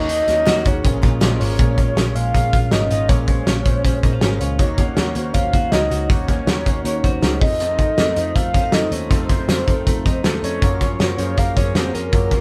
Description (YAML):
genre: jangly indie pop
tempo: 160 BPM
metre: 4/4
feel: straight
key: Bb minor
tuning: A4 = 440 Hz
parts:
  - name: soft octave-layered synth lead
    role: melody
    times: 0.0-12.4 s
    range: Bb4 to F5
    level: -25 LUFS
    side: equal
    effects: chorus
  - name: fingerpicked twelve-string acoustic guitar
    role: accompaniment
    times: 0.0-12.4 s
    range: F2 to Gb4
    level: -34 LUFS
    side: equal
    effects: none
  - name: warbly lo-fi synth keys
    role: accompaniment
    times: 0.0-12.4 s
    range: Db4 to Eb5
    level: -30 LUFS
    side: equal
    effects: chorus
  - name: direct-recorded clean electric guitar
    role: arpeggios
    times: 0.0-12.4 s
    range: F2 to Gb4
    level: -30 LUFS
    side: equal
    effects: none
  - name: vintage muted picked electric bass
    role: bass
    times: 0.0-12.4 s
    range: Ab1 to Gb2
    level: -26 LUFS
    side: equal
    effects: none
  - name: loose indie drum kit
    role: drums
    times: 0.1-12.4 s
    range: hi-hat, kick drum, snare drum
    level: -21 LUFS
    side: equal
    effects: none
  - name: group handclap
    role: percussion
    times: 0.5-1.3 s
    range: none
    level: -40 LUFS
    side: equal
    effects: none
room: light reverb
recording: band playing live in one room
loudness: -18 LUFS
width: mono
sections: 0.0-1.6 A section; 1.6-12.4 B section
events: synth keys fill 1.0-1.6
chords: 0.0 Ebm7; 0.8 Bbm7; 4.6 Ebm7; 7.4 F7; 10.6 Gbmaj7